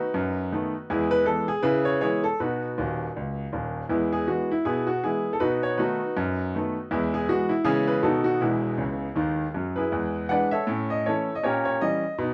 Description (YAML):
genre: jazz, stride piano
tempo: 159 BPM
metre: 4/4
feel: swing 59% on 8ths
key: E major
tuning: A4 = 438 Hz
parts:
  - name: clear grand piano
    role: solo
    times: 0.0-12.3 s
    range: D#1 to F#5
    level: -26 LUFS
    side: equal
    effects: none
room: moderate club reverb, RT60 0.5 s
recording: worn, warbling old tape, cassette tape, warbly pitch drift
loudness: -26 LUFS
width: mono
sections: 0.0-9.9 A section; 9.9-12.3 B section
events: grand piano fill 2.8-3.9, 8.8-9.9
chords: 0.1 B7/F#; 0.9 E; 1.6 C#m7; 2.4 B; 3.9 E; 5.4 B7; 6.2 B7/F#; 6.9 E; 7.7 C#m7; 8.0 B7; 8.4 E; 9.9 E7; 10.7 A; 11.4 A#dim7